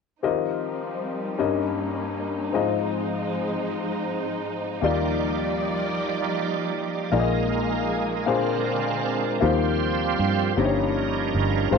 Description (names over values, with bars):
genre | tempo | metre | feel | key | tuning
slow gospel | 52 BPM (dotted quarters) | 6/8 | straight | Eb major | A4 = 440 Hz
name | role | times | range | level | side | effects
warm upright piano | accompaniment | 0.2-11.8 s | G2 to Eb5 | -25 LUFS | left 7 dB | none
warm studio string section | sustained chords | 0.2-9.4 s | D3 to D5 | -30 LUFS | right 2 dB | none
bright tonewheel organ | sustained chords | 4.8-11.8 s | F3 to D5 | -27 LUFS | right 10 dB | slow rotary speaker, overdrive, chorus vibrato
fingered electric bass | bass | 4.8-11.8 s | G1 to G2 | -27 LUFS | right 3 dB | transformer saturation
room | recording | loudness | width
moderate echo chamber reverb, RT60 1.4 s, small room ambience | 1960s-style stereo with parts hard left and right | -22 LUFS | side -5 dB against mid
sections
0.2-9.4 A section; 9.4-11.8 B section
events
tonewheel organ solo 9.4-11.8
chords
0.2 Eb69; 1.4 Eb7/G; 2.5 Ab6; 4.8 Ebmaj9; 7.1 Bb7sus4; 8.3 Bb9; 9.4 Eb69; 10.6 Eb7/G